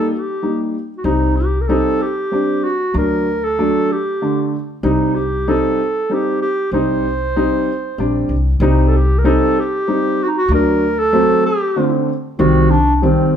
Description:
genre	klezmer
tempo	95 BPM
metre	3/4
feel	straight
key	C dorian sharp4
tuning	A4 = 439 Hz
part	warm clarinet	melody	0.0-13.3 s	C4 to C5	-18 LUFS	right 1 dB	none
part	dark upright piano	accompaniment	0.0-13.3 s	D3 to Eb4	-17 LUFS	equal	none
part	upright bass	bass	1.0-13.1 s	Bb1 to D2	-18 LUFS	equal	none
room	moderate large studio reverb, RT60 1.1 s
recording	band playing live in one room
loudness	-14 LUFS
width	side -8 dB against mid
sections	0.0-8.6 A section; 8.6-13.4 A section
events	none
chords	0.0 Eb; 1.1 Cm; 2.9 D; 4.8 Cm; 10.5 D; 12.4 Cm

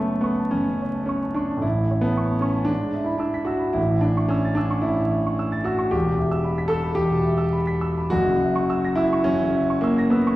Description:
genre	classical, romantic character piece for solo piano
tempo	111 BPM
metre	4/4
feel	uneven beats, rubato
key	unclear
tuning	A4 = 441 Hz
part	warm concert grand piano	solo	0.0-10.4 s	E1 to B6	-20 LUFS	equal	none
room	wet recital hall reverb, RT60 1.7 s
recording	heard from further back in the room, vinyl crackle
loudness	-20 LUFS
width	side -16 dB against mid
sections	0.0-10.4 A section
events	none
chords	0.0 F#m; 1.6 A; 2.7 E/G#; 3.8 A; 5.9 Em; 8.1 F#7

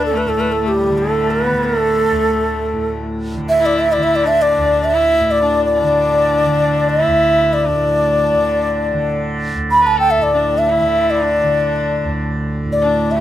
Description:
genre	indian classical, Hindustani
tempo	free time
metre	none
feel	none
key	D raga durga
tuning	A4 = 440 Hz
part	bansuri	melody	0.0-13.2 s	G4 to B5	-15 LUFS	equal	tape echo
part	rich sarangi	second line	0.0-13.2 s	G3 to B4	-21 LUFS	left 4 dB	none
part	tanpura	drone	0.0-13.2 s	D2 to D3	-21 LUFS	right 1 dB	none
room	moderate small room reverb, RT60 0.6 s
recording	none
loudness	-13 LUFS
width	side -12 dB against mid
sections	0.0-13.2 A section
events	none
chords	none

